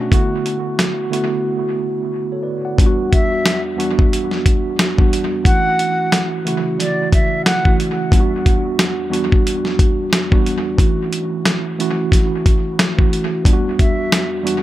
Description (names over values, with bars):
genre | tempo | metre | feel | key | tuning
hip hop, boom-bap hip-hop | 90 BPM | 4/4 | swing 58% on 16ths | E dorian | A4 = 440 Hz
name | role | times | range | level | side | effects
mellow tine electric piano | accompaniment | 0.0-14.6 s | E2 to F#5 | -19 LUFS | right 2 dB | medium stereo tremolo, high-pass filter, low-pass filter, dub echo
dusty soul sampler-style drum kit | drums | 0.1-14.6 s | hi-hat, kick drum, snare drum | -15 LUFS | equal | dub echo
concert flute | melody | 3.1-7.8, 13.8-14.3 s | D5 to F#5 | -22 LUFS | equal | high-pass filter, low-pass filter, dub echo
room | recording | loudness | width
moderate spring reverb, RT60 2.4 s | echo-heavy mix | -14 LUFS | side -14 dB against mid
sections
0.0-2.8 A section; 2.8-14.6 B section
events
break 1.5-2.8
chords
0.1 D6; 2.8 Em7; 5.5 Dmaj9 (rootless); 8.1 Em7; 10.8 A6/E; 13.5 Em7